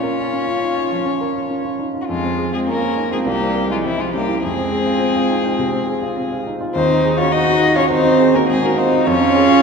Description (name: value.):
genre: quick classical-period movement for piano quartet.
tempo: 103 BPM.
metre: 4/4.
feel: straight.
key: unclear.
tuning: A4 = 439 Hz.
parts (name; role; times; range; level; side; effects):
warm violin; melody; 0.0-9.6 s; E4 to Eb5; -20 LUFS; left 5 dB; none.
dark violin; second line; 0.0-9.6 s; G3 to Gb4; -22 LUFS; left 2 dB; none.
warm cello; second line; 0.0-9.6 s; E3 to Eb4; -21 LUFS; right 6 dB; none.
warm baby grand piano; accompaniment; 0.0-9.6 s; C2 to Bb4; -21 LUFS; equal; none.
room: wet church reverb, RT60 2.6 s.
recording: recorded in a church or concert hall.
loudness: -15 LUFS.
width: side -5 dB against mid.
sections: 0.0-9.6 A section.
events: none.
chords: 0.0 Bbm; 2.1 Fm; 3.3 C7; 4.4 Fm; 6.7 Ab5/Eb; 9.1 Db/F.